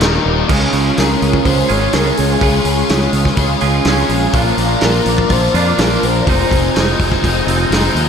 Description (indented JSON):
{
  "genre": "rock, shoegaze and dream pop",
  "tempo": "124 BPM",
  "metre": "4/4",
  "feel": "straight",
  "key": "unclear",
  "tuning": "A4 = 439 Hz",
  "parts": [
    { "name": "reedy FM lead", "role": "melody", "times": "0.0-7.0 s", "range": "Ab4 to D5", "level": "-22 LUFS", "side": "left 1 dB", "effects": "chorus, ping-pong delay" },
    { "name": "string machine, violins", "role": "sustained chords", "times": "0.0-8.1 s", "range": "Eb4 to D6", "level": "-23 LUFS", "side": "right 1 dB", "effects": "ensemble chorus" },
    { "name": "twangy electric guitar", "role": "arpeggios", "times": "0.0-8.1 s", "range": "F2 to Ab4", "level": "-25 LUFS", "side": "equal", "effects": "ensemble chorus, ping-pong delay" },
    { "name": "overdriven electric guitar", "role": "riff", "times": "0.0-8.1 s", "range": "Eb2 to Ab4", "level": "-18 LUFS", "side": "left 7 dB", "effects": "ensemble chorus" },
    { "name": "overdriven electric guitar", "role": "riff", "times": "0.0-0.5 s", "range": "Eb2 to Eb4", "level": "-24 LUFS", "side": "left 1 dB", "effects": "wide subtle chorus" },
    { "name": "twangy electric guitar", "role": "riff", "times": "0.0-8.1 s", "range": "Eb2 to Ab4", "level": "-19 LUFS", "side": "right 8 dB", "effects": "reverse reverb" },
    { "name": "growling fingered electric bass", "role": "bass", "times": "0.0-8.1 s", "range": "Eb1 to F2", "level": "-17 LUFS", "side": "equal", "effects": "overdrive" },
    { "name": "loose indie drum kit", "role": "drums", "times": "0.0-8.1 s", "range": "crash cymbal, hi-hat, kick drum, snare drum", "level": "-18 LUFS", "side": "equal", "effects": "none" }
  ],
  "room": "wet lush hall reverb, RT60 1.9 s, small room ambience",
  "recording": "dreamy mix soaked in reverb",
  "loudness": "-11 LUFS",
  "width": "side -7 dB against mid",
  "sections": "0.5-8.1 A section",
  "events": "none",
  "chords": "0.5 Dbmaj7; 4.3 Bb; 6.3 Fm7",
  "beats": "0.01 | 0.50 0.98 1.46 1.94 | 2.42 2.90 3.38 3.87 | 4.35 4.83 5.31 5.80 | 6.28 6.76 7.24 7.72"
}